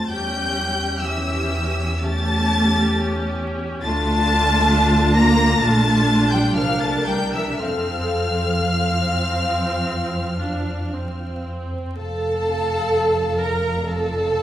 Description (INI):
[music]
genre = classical, slow romantic movement for string orchestra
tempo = 53-68 BPM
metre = 4/4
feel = rubato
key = F major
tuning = A4 = 440 Hz
[part]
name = warm symphonic violin section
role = melody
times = 0.0-14.4 s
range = F5 to Bb6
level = -26 LUFS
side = left 3 dB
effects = none
[part]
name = rich chamber violin section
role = second line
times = 0.0-14.4 s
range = E5 to Bb5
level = -25 LUFS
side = left 2 dB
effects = none
[part]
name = rich studio viola section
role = accompaniment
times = 0.0-14.4 s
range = C4 to Bb4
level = -24 LUFS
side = right 1 dB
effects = none
[part]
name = dark chamber double bass section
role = bass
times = 0.0-14.4 s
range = F1 to F2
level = -25 LUFS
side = equal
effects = none
[part]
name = warm symphonic cello section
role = bass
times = 0.0-14.4 s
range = F2 to Bb3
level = -24 LUFS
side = right 1 dB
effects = none
[sound]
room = wet recital hall reverb, RT60 1.4 s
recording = recorded in a church or concert hall, vinyl crackle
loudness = -18 LUFS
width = side -12 dB against mid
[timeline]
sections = 0.0-12.0 A section; 12.0-14.4 A section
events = none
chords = 0.1 A7/E; 3.8 Dm; 5.6 Bb; 6.6 C9; 7.6 F